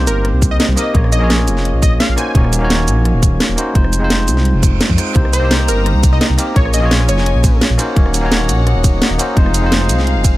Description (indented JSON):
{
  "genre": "liquid drum and bass",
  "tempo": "171 BPM",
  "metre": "4/4",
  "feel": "straight",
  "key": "unclear",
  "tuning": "A4 = 439 Hz",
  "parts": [
    { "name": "bell-like tine electric piano", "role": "accompaniment", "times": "0.0-10.4 s", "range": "Ab3 to Db5", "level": "-19 LUFS", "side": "equal", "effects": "digital delay" },
    { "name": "dark detuned saw bass", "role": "bass", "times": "0.0-10.4 s", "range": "Eb1 to F2", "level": "-15 LUFS", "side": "equal", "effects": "none" },
    { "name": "plucky unison lead", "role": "melody", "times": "0.1-2.5, 5.3-7.6 s", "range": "Bb4 to Ab5", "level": "-24 LUFS", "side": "left 1 dB", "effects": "digital delay" },
    { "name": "garage drum kit", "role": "drums", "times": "0.1-10.3 s", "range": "hi-hat, ride cymbal, rim click, shaker, snare drum", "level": "-18 LUFS", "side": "right 1 dB", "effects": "none" },
    { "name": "electronic kick drum", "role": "drums", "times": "0.4-10.3 s", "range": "none", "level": "-12 LUFS", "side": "equal", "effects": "none" },
    { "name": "reverse cymbal", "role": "sound effects", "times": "4.6-5.2 s", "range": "none", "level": "-29 LUFS", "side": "right 6 dB", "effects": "none" },
    { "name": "rich chamber string section", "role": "sustained chords", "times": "5.2-10.4 s", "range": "Db4 to Bb5", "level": "-24 LUFS", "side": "left 4 dB", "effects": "none" }
  ],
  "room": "little or no reverb",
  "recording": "none",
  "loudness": "-11 LUFS",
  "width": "side -17 dB against mid",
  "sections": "0.0-10.4 A section",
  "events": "reverse cymbal 4.6-5.2",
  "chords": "0.0 Cm7; 0.9 Bbm7; 2.2 Ebm7; 3.8 Fm7; 5.2 Cm7; 6.6 Bbm7; 7.8 Ebm7; 9.4 Fm7"
}